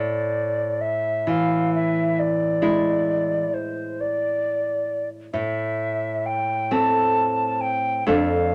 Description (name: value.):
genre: romantic duo for recorder and classical guitar.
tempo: 44 BPM (dotted quarters).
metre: 12/8.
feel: rubato.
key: A minor.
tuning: A4 = 440 Hz.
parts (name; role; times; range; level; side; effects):
mellow hollow tenor recorder; melody; 0.0-8.5 s; C5 to A5; -25 LUFS; equal; none.
nylon-string guitar; accompaniment; 0.0-8.5 s; F2 to E4; -26 LUFS; equal; none.
room: wet studio reverb, RT60 0.6 s.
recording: none.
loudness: -23 LUFS.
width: mono.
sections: 0.0-8.5 A section.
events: none.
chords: 0.0 E7/A; 5.3 Am.